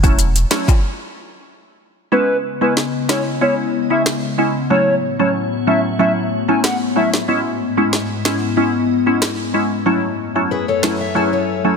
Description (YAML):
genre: dancehall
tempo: 93 BPM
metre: 4/4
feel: straight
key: C# minor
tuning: A4 = 440 Hz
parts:
  - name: glassy wavetable pluck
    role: accompaniment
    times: 0.0-11.8 s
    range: F#3 to E4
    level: -18 LUFS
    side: equal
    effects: chorus
  - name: afro-pop drum kit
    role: drums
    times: 0.0-11.0 s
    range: finger snaps, hi-hat, kick drum, rim click, snare drum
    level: -19 LUFS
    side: equal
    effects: overdrive, soft clipping on snare
  - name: maracas and timbales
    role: percussion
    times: 0.0-0.8 s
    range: none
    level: -26 LUFS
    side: left 10 dB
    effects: none
  - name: hollow clarinet-like synth lead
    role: melody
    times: 2.1-7.1 s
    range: B4 to G#5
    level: -20 LUFS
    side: equal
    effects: chorus, tape echo
  - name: glassy FM pad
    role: sustained chords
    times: 2.5-11.8 s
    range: F#2 to G#5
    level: -21 LUFS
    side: left 4 dB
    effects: ensemble chorus, built-in reverb, sidechain pumping
  - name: picked old ladder-braced acoustic guitar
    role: arpeggios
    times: 10.5-11.8 s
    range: G#4 to E5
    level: -20 LUFS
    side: left 8 dB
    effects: tape echo
room: moderate lush hall reverb, RT60 2.3 s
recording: dense, heavily limited modern master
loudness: -15 LUFS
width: side -5 dB against mid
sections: 0.0-2.1 A section; 2.1-11.8 B section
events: break 0.8-2.1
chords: 0.0 F#m7; 2.1 C#m7; 4.7 A6; 7.3 C#m7/G#; 9.9 F#m7